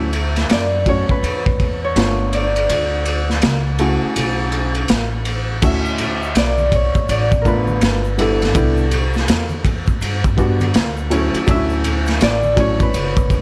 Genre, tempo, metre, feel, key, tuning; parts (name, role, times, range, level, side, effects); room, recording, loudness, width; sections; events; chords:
hip hop, jazz-hop; 82 BPM; 4/4; swing 62% on 16ths; D major; A4 = 440 Hz
concert harp; melody; 0.0-13.4 s; G4 to E5; -24 LUFS; equal; slapback echo
warm upright piano; accompaniment; 0.0-12.9 s; C#3 to F#4; -24 LUFS; equal
upright bass; bass; 0.0-13.4 s; F#1 to G2; -23 LUFS; equal
crunchy breakbeat drum kit; drums; 0.1-13.4 s; crash cymbal, hi-hat, kick drum, ride cymbal, snare drum; -21 LUFS; equal
egg shaker and congas; percussion; 5.6-13.4 s; -34 LUFS; equal
small room ambience; -17 LUFS; mono
0.0-5.6 A section; 5.6-13.4 A section
kick muted 2.7-5.6
0.0 Dmaj9; 2.0 G9; 2.7 Dmaj9; 7.8 G9; 8.6 Cmaj7; 11.5 Dmaj9